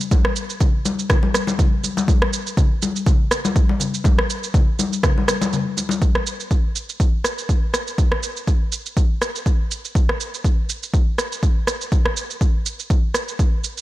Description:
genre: house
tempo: 122 BPM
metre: 4/4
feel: swing 55% on 16ths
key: none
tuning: none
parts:
  - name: electronic shaker and rim click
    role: drums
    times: 0.0-13.8 s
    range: none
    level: -24 LUFS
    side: right 2 dB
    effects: small room ambience
  - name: electronic kick drum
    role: drums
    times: 0.1-13.5 s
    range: none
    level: -17 LUFS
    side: equal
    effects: small room ambience
  - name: congas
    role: percussion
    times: 0.1-6.0 s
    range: none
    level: -24 LUFS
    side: left 4 dB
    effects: none
room: digital ambience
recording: none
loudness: -17 LUFS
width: side -16 dB against mid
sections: 0.0-6.0 A section; 6.0-13.8 B section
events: break 5.5-6.0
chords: none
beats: | 0.12 0.61 1.10 1.59 | 2.08 2.57 3.07 3.56 | 4.05 4.54 5.03 5.53 | 6.02 6.51 7.00 7.49 | 7.98 8.48 8.97 9.46 | 9.95 10.44 10.94 11.43 | 11.92 12.41 12.90 13.39

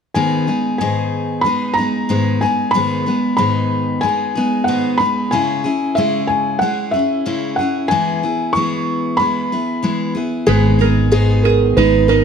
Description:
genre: acoustic folk duo or small band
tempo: 93 BPM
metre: 4/4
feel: straight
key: G# minor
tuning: A4 = 442 Hz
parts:
  - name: felt-muted upright piano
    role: melody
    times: 0.1-12.2 s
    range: G#4 to C#6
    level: -18 LUFS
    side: equal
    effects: none
  - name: picked steel-string acoustic guitar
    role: accompaniment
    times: 0.2-12.2 s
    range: G#2 to G#4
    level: -18 LUFS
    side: left 1 dB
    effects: none
  - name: open-back banjo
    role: arpeggios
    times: 10.5-12.2 s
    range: D#4 to B4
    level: -18 LUFS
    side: right 10 dB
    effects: none
  - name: hollow-body short-scale fingered electric bass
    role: bass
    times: 10.5-12.2 s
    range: G#1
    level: -15 LUFS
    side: right 2 dB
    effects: none
room: light reverb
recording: none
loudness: -14 LUFS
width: side -7 dB against mid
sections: 0.2-10.5 A section; 10.5-12.2 A section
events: none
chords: 0.2 G#m; 5.3 C#m; 7.9 E; 10.5 G#m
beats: | 0.16 0.80 1.45 2.10 | 2.74 3.39 4.04 4.68 | 5.33 5.97 6.62 7.26 | 7.91 8.55 9.20 9.84 | 10.49 11.13 11.78

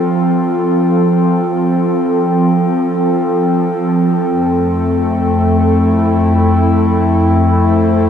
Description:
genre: ambient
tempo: free time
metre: none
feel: none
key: F major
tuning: A4 = 440 Hz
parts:
  - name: airy breathy pad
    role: sustained chords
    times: 0.0-8.1 s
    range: F2 to C5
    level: -11 LUFS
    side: equal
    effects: chorus
  - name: analog drone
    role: drone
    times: 0.0-8.1 s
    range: F3 to C4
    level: -23 LUFS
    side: equal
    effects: none
  - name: glass harmonica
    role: texture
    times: 0.0-8.1 s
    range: G5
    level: -22 LUFS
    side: left 3 dB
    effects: stereo widening
room: wet concert hall reverb, RT60 2.2 s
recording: cassette tape, nothing above 11.0 kHz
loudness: -11 LUFS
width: side -8 dB against mid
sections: 0.0-8.1 A section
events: none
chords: 0.0 Fadd9; 4.2 Am7/F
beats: free time

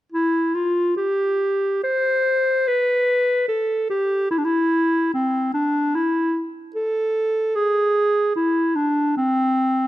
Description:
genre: classical, baroque-style fantasia for unaccompanied clarinet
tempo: 74 BPM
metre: 3/4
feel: rubato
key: C major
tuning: A4 = 440 Hz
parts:
  - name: mellow clarinet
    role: solo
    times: 0.1-9.9 s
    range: C4 to C5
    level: -18 LUFS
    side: equal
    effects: none
room: light reverb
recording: close, detailed microphones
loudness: -18 LUFS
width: side -14 dB against mid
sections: 0.1-9.9 A section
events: none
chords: none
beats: | 0.12 0.95 1.83 | 2.67 3.48 4.31 | 5.13 5.94 6.75 | 7.56 8.36 9.16

